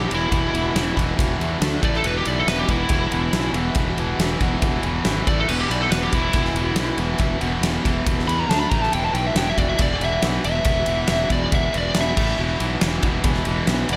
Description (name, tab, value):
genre	hard rock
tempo	139 BPM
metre	4/4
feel	straight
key	unclear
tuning	A4 = 439 Hz
part	biting lead guitar	melody	0.0-14.0 s	E4 to B5	-27 LUFS	equal	overdrive, slapback echo
part	overdriven electric guitar	riff	0.0-14.0 s	E2 to D4	-26 LUFS	equal	slapback echo
part	fuzz fingered electric bass	bass	0.0-14.0 s	E1 to E2	-28 LUFS	equal	overdrive
part	big rock drum kit	drums	0.1-14.0 s	crash cymbal, kick drum, ride cymbal, snare drum	-26 LUFS	equal	none
room	moderate lush hall reverb, RT60 2.2 s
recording	big arena sound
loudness	-21 LUFS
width	mono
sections	0.0-14.0 A section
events	lead electric guitar solo 0.0-14.0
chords	0.0 E5; 1.6 D5; 1.8 A5; 2.0 E5; 5.3 A5; 5.5 E5; 8.5 D5; 8.7 A5; 8.9 E5; 12.2 A5; 12.4 E5